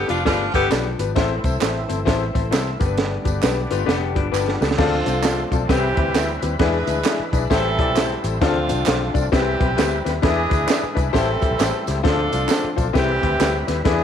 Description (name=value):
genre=uptempo 1960s-style soul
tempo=132 BPM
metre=4/4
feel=swing 63% on 8ths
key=D dorian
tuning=A4 = 440 Hz
part: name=bright saxophone section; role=second line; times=0.0-0.7, 4.8-14.0 s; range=D3 to B4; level=-23 LUFS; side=right 1 dB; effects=none
part: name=clear upright piano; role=accompaniment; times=0.0-14.0 s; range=G2 to D5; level=-23 LUFS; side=left 10 dB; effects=none
part: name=vintage muted fingered electric bass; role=bass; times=0.0-14.0 s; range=F1 to E2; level=-25 LUFS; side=equal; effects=none
part: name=compact cocktail drum kit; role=drums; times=0.1-14.0 s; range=crash cymbal, hi-hat, kick drum, snare drum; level=-22 LUFS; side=right 2 dB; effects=none
part: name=tambourine and handclaps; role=percussion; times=0.1-14.0 s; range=none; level=-32 LUFS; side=right 11 dB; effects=none
part: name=electric guitar through a small old amp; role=riff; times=0.3-4.8 s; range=F3 to G4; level=-29 LUFS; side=left 13 dB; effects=spring reverb
part: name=overdriven tonewheel organ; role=sustained chords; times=1.1-14.0 s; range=D3 to B4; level=-29 LUFS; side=right 1 dB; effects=slow rotary speaker, chorus vibrato
room=light reverb, small room ambience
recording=1960s-style stereo with parts hard left and right, vinyl crackle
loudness=-17 LUFS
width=side -8 dB against mid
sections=0.0-4.8 A section; 4.8-14.0 B section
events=drum fill 4.3-4.8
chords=0.0 G; 1.2 Am; 2.8 G; 4.8 Dm7; 5.7 Cmaj7; 6.6 E7; 7.5 Am7; 8.4 Dm7; 9.3 Cmaj7; 10.2 E7; 11.1 Am7; 12.0 Dm7; 12.9 Cmaj7